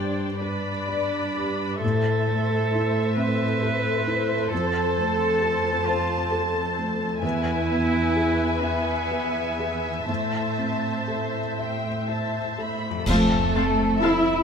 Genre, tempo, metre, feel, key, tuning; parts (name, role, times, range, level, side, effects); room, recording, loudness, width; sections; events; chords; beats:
cinematic, emotional film score for orchestra; 40-45 BPM (dotted quarters); 6/8; rubato; A minor; A4 = 440 Hz
muted cello; melody; 0.0-11.6 s; A3 to B4; -28 LUFS; right 4 dB
muted studio violin section; melody; 0.0-14.1 s; E5 to B5; -31 LUFS; equal
muted symphonic violin section; second line; 0.0-14.4 s; A4 to E5; -30 LUFS; left 2 dB
felt-muted upright piano; accompaniment; 0.0-14.4 s; E2 to E5; -29 LUFS; equal
muted symphonic viola section; accompaniment; 0.0-14.1 s; A4 to F5; -33 LUFS; left 1 dB
concert harp; arpeggios; 0.0-14.4 s; E2 to B5; -33 LUFS; left 9 dB
muted chamber cello section; bass; 0.0-14.4 s; E2 to E4; -28 LUFS; right 1 dB
cymbal swell, clash cymbals and concert bass drum; percussion; 10.1-14.4 s; -29 LUFS; equal
muted symphonic double bass section; bass; 13.1-14.3 s; F2; -30 LUFS; right 4 dB
moderate scoring stage reverb, RT60 1.5 s; close, detailed microphones; -22 LUFS; side -6 dB against mid
0.0-13.1 A section; 13.1-14.4 A section
band accent 13.1-14.0
0.0 G; 1.8 Am; 4.5 F; 7.2 E; 10.1 Am
0.42 | 1.83 3.17 | 4.52 5.86 | 7.23 8.63 | 10.09 11.58 | 13.07